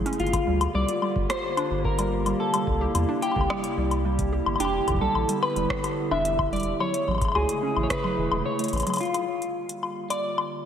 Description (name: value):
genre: IDM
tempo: 109 BPM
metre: 4/4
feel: straight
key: G dorian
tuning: A4 = 441 Hz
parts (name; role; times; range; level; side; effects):
- warbly tape-like pad; sustained chords; 0.0-10.7 s; C3 to G#4; -30 LUFS; right 1 dB; chorus, built-in reverb, shimmer reverb
- warbly dusty pluck; arpeggios; 0.0-9.0 s; C#3 to G4; -32 LUFS; right 3 dB; chorus, analog delay
- round analog bass; bass; 0.0-8.8 s; E1 to E2; -28 LUFS; equal; none
- electro analog drum machine; drums; 0.1-10.5 s; hi-hat, rim click, woodblock; -30 LUFS; left 4 dB; overdrive
- semi-hollow electric guitar; melody; 0.2-10.7 s; F4 to E5; -28 LUFS; left 1 dB; analog chorus, analog delay, shimmer reverb
- electronic kick drum; drums; 0.3-8.0 s; none; -31 LUFS; equal; overdrive
room: wet lush hall reverb, RT60 1.9 s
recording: dreamy mix soaked in reverb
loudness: -23 LUFS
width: side -8 dB against mid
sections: 0.0-9.0 A section; 9.0-10.7 B section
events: kick drops out 8.5-9.0; drum fill 8.7; filter sweep on ambient pad 9.0-10.7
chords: 0.2 Gm7; 2.4 C7; 4.6 Em7; 6.8 Amaj7; 9.0 Gm7